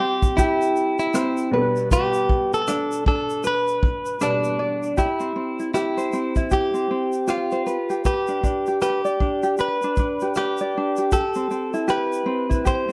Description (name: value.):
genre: acoustic pop.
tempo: 78 BPM.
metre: 4/4.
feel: swing 60% on 16ths.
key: C major.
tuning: A4 = 436 Hz.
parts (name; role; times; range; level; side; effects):
direct-recorded clean electric guitar; melody; 0.0-12.9 s; D4 to C5; -26 LUFS; equal; spring reverb, slapback echo.
clear upright piano; accompaniment; 0.0-5.0 s; B2 to C5; -32 LUFS; equal; none.
tenor ukulele; accompaniment; 0.0-12.9 s; C4 to D5; -26 LUFS; equal; none.
unplugged drum kit; drums; 0.2-12.9 s; kick drum, rim click, shaker; -26 LUFS; equal; none.
room: small room ambience.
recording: none.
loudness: -22 LUFS.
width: mono.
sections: 0.0-5.0 A section; 5.0-12.9 B section.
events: none.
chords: 0.0 C; 1.5 G/B; 5.0 C; 7.7 G; 11.1 C.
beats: 0.38 1.14 | 1.91 2.68 3.45 4.21 | 4.98 5.75 6.52 7.29 | 8.05 8.82 9.59 10.36 | 11.13 11.90 12.66.